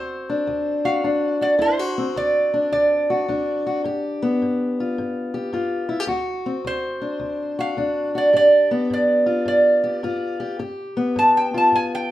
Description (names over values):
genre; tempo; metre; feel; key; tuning
acoustic country blues, solo or duo; 107 BPM; 4/4; swing 66% on 8ths; D mixolydian; A4 = 440 Hz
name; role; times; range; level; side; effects
lap resonator guitar; melody; 0.0-12.1 s; C5 to A5; -18 LUFS; right 1 dB; none
fingerpicked steel-string acoustic guitar; accompaniment; 0.0-12.1 s; D2 to G4; -23 LUFS; left 2 dB; none
room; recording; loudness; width
wet large studio reverb, RT60 0.9 s; band playing live in one room; -18 LUFS; side -14 dB against mid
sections
0.0-12.1 A section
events
resonator guitar played with a steel bar solo 0.0-12.1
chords
0.0 D7; 3.8 G7; 6.1 D7; 8.3 G7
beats
0.48 1.04 | 1.60 2.17 2.73 3.29 | 3.85 4.41 4.97 5.53 | 6.10 6.66 7.22 7.79 | 8.35 8.91 9.48 10.04 | 10.60 11.17 11.73